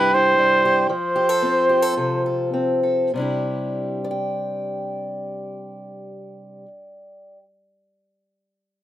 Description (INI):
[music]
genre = folk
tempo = 99-121 BPM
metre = 4/4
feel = straight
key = C major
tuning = A4 = 440 Hz
[part]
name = mellow trumpet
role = melody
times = 0.0-2.5 s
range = B4 to C5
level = -18 LUFS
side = right 1 dB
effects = none
[part]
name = fingerpicked acoustic archtop guitar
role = accompaniment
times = 0.0-7.4 s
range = G2 to G5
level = -23 LUFS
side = left 1 dB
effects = none
[sound]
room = moderate studio ambience, RT60 0.5 s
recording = none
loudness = -18 LUFS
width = side -13 dB against mid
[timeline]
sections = 0.0-3.1 A section; 3.1-8.0 B section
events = slowing down 0.0-3.1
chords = 0.0 C; 0.9 F; 3.1 Cadd9